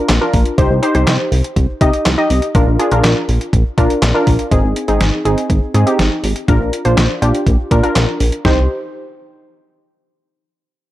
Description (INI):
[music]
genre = synth-pop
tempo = 122 BPM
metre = 4/4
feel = straight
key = C minor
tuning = A4 = 439 Hz
[part]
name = warbly dusty pluck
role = accompaniment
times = 0.0-8.7 s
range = C4 to Eb5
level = -17 LUFS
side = equal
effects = chorus
[part]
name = chorused synth bass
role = bass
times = 0.1-8.7 s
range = Ab1 to C3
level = -14 LUFS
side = equal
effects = none
[part]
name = detuned 8-bit digital drum machine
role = drums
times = 0.1-8.6 s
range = handclaps, hi-hat, kick drum, snare drum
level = -16 LUFS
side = equal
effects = overdrive
[sound]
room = digital ambience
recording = dry, gritty hardware recording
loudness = -12 LUFS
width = side -15 dB against mid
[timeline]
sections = 0.0-4.5 A section; 4.5-8.4 B section; 8.4-10.4 C section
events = none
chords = 0.0 Bb; 0.6 Cm; 2.5 Bb; 4.5 Abmaj7; 6.5 Bbadd9; 8.4 Cm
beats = 0.09 | 0.58 1.07 1.56 2.06 | 2.55 3.04 3.53 4.02 | 4.51 5.01 5.50 5.99 | 6.48 6.97 7.47 7.96 | 8.45